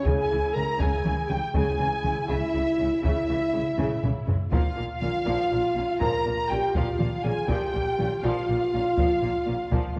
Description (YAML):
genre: cinematic, epic orchestral film score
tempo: 81 BPM (dotted quarters)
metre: 12/8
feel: straight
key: unclear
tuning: A4 = 442 Hz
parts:
  - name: rich symphonic violin section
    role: melody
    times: 0.0-10.0 s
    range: Fb5 to Bb5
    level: -37 LUFS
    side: equal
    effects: none
  - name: rich symphonic violin section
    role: second line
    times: 0.0-10.0 s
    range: Fb5 to Bb5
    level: -36 LUFS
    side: equal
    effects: none
  - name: warm symphonic viola section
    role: accompaniment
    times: 0.0-10.0 s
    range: Db3 to F4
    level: -38 LUFS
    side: equal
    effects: none
  - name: mellow French horn section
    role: sustained chords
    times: 0.0-10.0 s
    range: Fb4 to Bb4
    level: -30 LUFS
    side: equal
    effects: none
  - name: rich symphonic cello section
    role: bass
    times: 0.1-10.0 s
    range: Bb2 to Db3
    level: -36 LUFS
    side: equal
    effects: none
  - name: warm symphonic double bass section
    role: bass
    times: 0.1-10.0 s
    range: Bb1 to Db2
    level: -35 LUFS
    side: equal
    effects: none
  - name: taiko ensemble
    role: drums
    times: 0.1-10.0 s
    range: none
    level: -31 LUFS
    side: equal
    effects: none
room: wet scoring stage reverb, RT60 1.6 s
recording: worn, warbling old tape, cassette tape, warbly pitch drift, lossy compression artefacts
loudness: -25 LUFS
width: mono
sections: 0.0-10.0 A section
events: drum fill 3.8-4.5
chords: 0.0 Dbm; 4.5 Bb5